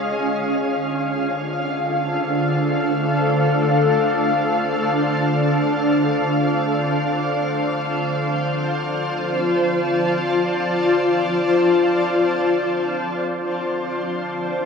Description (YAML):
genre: ambient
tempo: free time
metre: none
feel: none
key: D minor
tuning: A4 = 440 Hz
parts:
  - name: granular cloud pad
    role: sustained chords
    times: 0.0-14.7 s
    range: D4 to A5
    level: -18 LUFS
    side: left 1 dB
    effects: built-in reverb
  - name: organ-like drone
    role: drone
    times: 0.8-14.7 s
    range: D3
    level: -27 LUFS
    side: right 1 dB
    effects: ensemble chorus, built-in reverb
  - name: bright studio violin section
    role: texture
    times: 0.0-12.9 s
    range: F5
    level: -33 LUFS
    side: right 1 dB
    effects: none
room: wet shimmer reverb, RT60 8.8 s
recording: worn, warbling old tape, cassette tape, warbly pitch drift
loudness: -18 LUFS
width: side -5 dB against mid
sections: 0.1-12.9 A section; 12.9-14.7 B section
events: fade-in on violin section 0.1-12.9; fade-out on synth drone 0.1-12.9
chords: 0.1 Dm7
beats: free time